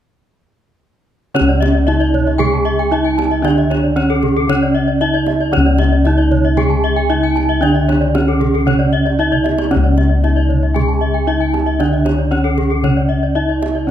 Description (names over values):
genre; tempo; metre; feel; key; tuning
Balinese gamelan; 115 BPM; 4/4; straight; C# pelog; A4 = 442 Hz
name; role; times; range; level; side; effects
gamelan-type bronze metallophone; accompaniment; 1.3-13.9 s; C#3 to G#3-45c; -23 LUFS; right 3 dB; none
gamelan-type bronze metallophone; arpeggios; 1.3-13.9 s; A4-40c to G#5-45c; -21 LUFS; left 6 dB; none
gamelan-type bronze metallophone; melody; 1.4-13.9 s; C#4 to G#4-45c; -17 LUFS; right 1 dB; none
gamelan-type bossed gongs; bass; 1.4-13.9 s; C#2 to D4; -16 LUFS; left 1 dB; none
kendang; percussion; 1.4-13.9 s; none; -25 LUFS; right 5 dB; none
gamelan-type bronze metallophone; arpeggios; 1.5-13.8 s; G#4-45c to A5-40c; -24 LUFS; right 4 dB; none
room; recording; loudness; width
light reverb; close, detailed microphones; -12 LUFS; side -10 dB against mid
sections
1.4-13.9 A section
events
drum fill 9.3-9.7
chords
none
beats
| 1.36 1.88 2.40 2.92 | 3.44 3.97 4.49 5.01 | 5.53 6.05 6.58 7.10 | 7.62 8.14 8.66 9.18 | 9.71 10.23 10.75 11.27 | 11.79 12.31 12.84 13.36 | 13.88